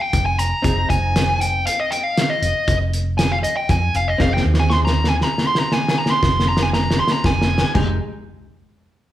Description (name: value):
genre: progressive instrumental, band music in an uneven meter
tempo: 118 BPM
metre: 7/4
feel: straight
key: unclear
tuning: A4 = 440 Hz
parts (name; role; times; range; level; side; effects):
- dark smooth lead guitar; melody; 0.0-7.7 s; Eb5 to Db6; -20 LUFS; equal; overdrive
- vintage hollow-body jazz guitar; accompaniment; 0.0-8.0 s; Ab3 to Ab4; -29 LUFS; equal; none
- hollow-body short-scale fingered electric bass; bass; 0.1-8.0 s; F1 to F2; -20 LUFS; equal; none
- cloth-damped thuddy drum kit; drums; 0.1-7.9 s; crash cymbal, hi-hat, kick drum, snare drum, toms; -20 LUFS; equal; none
room: moderate large studio reverb, RT60 1.1 s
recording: band playing live in one room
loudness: -16 LUFS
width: side -13 dB against mid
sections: 0.0-7.7 A section; 7.7-9.1 B section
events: lead electric guitar solo 0.0-7.7; drum fill 4.2-7.7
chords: 0.0 Ab/F; 7.7 Fm7